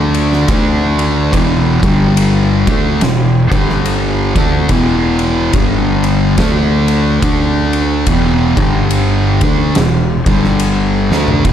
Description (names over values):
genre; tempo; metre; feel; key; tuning
stoner and doom metal; 71 BPM; 4/4; swing 60% on 8ths; E minor; A4 = 440 Hz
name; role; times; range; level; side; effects
thick fuzz guitar; riff; 0.0-11.5 s; E2 to D4; -13 LUFS; equal; distortion
fuzz fingered electric bass; bass; 0.0-11.5 s; E1 to D2; -17 LUFS; equal; overdrive
oversized low-tuned drum kit; drums; 0.1-11.5 s; kick drum, ride cymbal, snare drum, toms; -17 LUFS; equal; none
room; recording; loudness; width
small room reverb; dark, warm production; -10 LUFS; side -10 dB against mid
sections
0.0-11.5 A section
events
drum fill 11.0-11.4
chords
0.0 D5; 1.3 E5; 1.8 G5; 2.6 E5; 3.4 G5; 4.3 E5; 5.5 G5; 6.4 D5; 8.1 E5; 8.5 G5; 9.3 E5; 10.2 G5; 11.0 E5